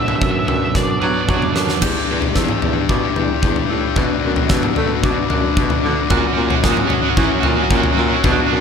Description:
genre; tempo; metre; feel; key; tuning
post-rock; 112 BPM; 4/4; straight; E minor; A4 = 439 Hz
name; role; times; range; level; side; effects
octave-fuzz lead guitar; melody; 0.0-1.5 s; D5 to E5; -24 LUFS; left 1 dB; distortion, digital delay
warbly tape-like pad; sustained chords; 0.0-8.6 s; D4 to B5; -32 LUFS; right 1 dB; none
clean electric guitar; arpeggios; 0.0-8.6 s; E2 to B4; -27 LUFS; left 2 dB; digital delay
glockenspiel with soft plastic mallets; arpeggios; 0.0-8.6 s; C#6 to G6; -27 LUFS; right 4 dB; digital delay
crunchy overdriven guitar; riff; 0.0-1.8, 6.1-8.6 s; B2 to F#4; -21 LUFS; right 12 dB; harmonic tremolo
huge arena drum kit; drums; 0.1-8.4 s; crash cymbal, kick drum, snare drum, toms; -19 LUFS; equal; none
breathy baritone saxophone; bass; 0.2-8.6 s; E2 to A3; -23 LUFS; equal; none
thick fuzz guitar; riff; 1.8-8.6 s; C#4 to G4; -20 LUFS; left 14 dB; distortion
room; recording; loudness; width
light reverb; none; -14 LUFS; side -6 dB against mid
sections
0.0-1.8 A section; 1.8-8.6 B section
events
drum fill 0.8-1.8; build-up 1.8-8.6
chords
0.0 Bm7/F#; 1.8 Em7; 4.0 Bm; 6.1 F#7/A#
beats
0.22 0.75 1.29 | 1.83 2.36 2.90 3.43 | 3.97 4.50 5.04 5.57 | 6.11 6.64 7.18 7.71 | 8.25

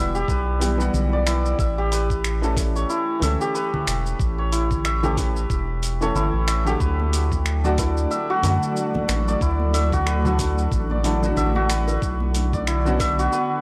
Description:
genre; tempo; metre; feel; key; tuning
organic downtempo; 92 BPM; 4/4; swing 57% on 16ths; unclear; A4 = 444 Hz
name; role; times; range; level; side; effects
felt-muted upright piano; accompaniment; 0.0-13.6 s; D3 to F#5; -30 LUFS; equal; sidechain pumping, analog delay
santur; arpeggios; 0.0-13.6 s; E4 to E5; -27 LUFS; equal; analog delay
round analog bass; bass; 0.0-13.3 s; E1 to F#2; -25 LUFS; equal; tube saturation, sidechain pumping
dusty soul sampler-style drum kit; drums; 0.1-13.5 s; congas, finger snaps, hi-hat, shaker; -32 LUFS; equal; none
electronic kick drum; drums; 0.3-13.1 s; none; -28 LUFS; equal; none
granular cloud pad; sustained chords; 7.6-13.6 s; D3 to C#6; -33 LUFS; equal; built-in reverb, sidechain pumping
congas and bongos; percussion; 7.0-13.1 s; none; -37 LUFS; equal; none
room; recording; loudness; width
light reverb, digital ambience; dry, gritty hardware recording, transformer saturation; -22 LUFS; mono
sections
0.0-13.6 A section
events
none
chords
0.0 Emadd9; 1.6 A; 6.8 D; 12.0 Bmadd9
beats
0.28 0.94 | 1.59 2.24 2.89 3.54 | 4.20 4.85 5.50 6.15 | 6.80 7.46 8.11 8.76 | 9.41 10.07 10.72 11.37 | 12.02 12.68 13.33

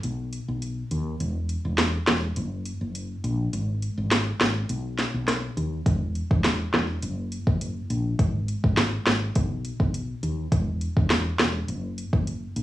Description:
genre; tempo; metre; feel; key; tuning
dancehall; 103 BPM; 4/4; straight; unclear; A4 = 441 Hz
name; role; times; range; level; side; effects
woody fretless electric bass; bass; 0.0-12.6 s; E1 to D#2; -27 LUFS; equal; none
afro-pop drum kit; drums; 0.0-12.6 s; hi-hat, kick drum, rim click, snare drum; -23 LUFS; equal; cassette tape
room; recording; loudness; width
light reverb; home recording on cassette, studio reverb; -23 LUFS; side -14 dB against mid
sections
0.0-12.6 A section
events
break 0.0-5.9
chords
none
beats
0.04 0.62 | 1.20 1.78 2.37 2.95 | 3.53 4.11 4.70 5.28 | 5.86 6.44 7.03 7.61 | 8.19 8.77 9.36 9.94 | 10.52 11.10 11.69 12.27

